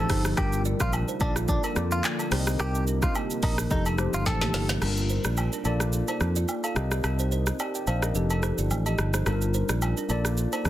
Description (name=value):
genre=afrobeats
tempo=108 BPM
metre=4/4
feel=swing 55% on 16ths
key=G minor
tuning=A4 = 439 Hz
part: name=direct-recorded clean electric guitar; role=melody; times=0.0-4.7 s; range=D4 to A4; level=-33 LUFS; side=equal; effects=digital delay
part: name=mellow tine electric piano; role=accompaniment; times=0.0-10.7 s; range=F3 to G5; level=-32 LUFS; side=left 4 dB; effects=phaser
part: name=glassy FM pad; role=sustained chords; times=0.0-4.8 s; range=C3 to A4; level=-38 LUFS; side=left 1 dB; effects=none
part: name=kalimba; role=riff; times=0.0-10.6 s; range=Bb3 to F5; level=-34 LUFS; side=right 8 dB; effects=digital delay
part: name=fingered electric bass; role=bass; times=0.0-10.7 s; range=F1 to F2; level=-27 LUFS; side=equal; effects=none
part: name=afro-pop drum kit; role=drums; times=0.1-10.7 s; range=crash cymbal, handclaps, hi-hat, kick drum, rim click, shaker, snare drum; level=-30 LUFS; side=equal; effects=soft clipping on snare
part: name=agogo bells and woodblock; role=percussion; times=0.4-10.6 s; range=none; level=-36 LUFS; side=equal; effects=none
room=digital ambience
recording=dense, heavily limited modern master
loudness=-24 LUFS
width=side -13 dB against mid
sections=0.0-4.8 A section; 4.8-10.7 B section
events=drum fill 4.3-4.8; kick muted 4.8-10.7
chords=0.4 Gm7; 1.2 Bbmaj7; 2.3 Cm7; 3.7 F9; 4.8 Gm7; 5.7 Bbmaj7; 6.8 Cm7; 8.2 F9; 9.3 Gm7; 10.1 Bbmaj7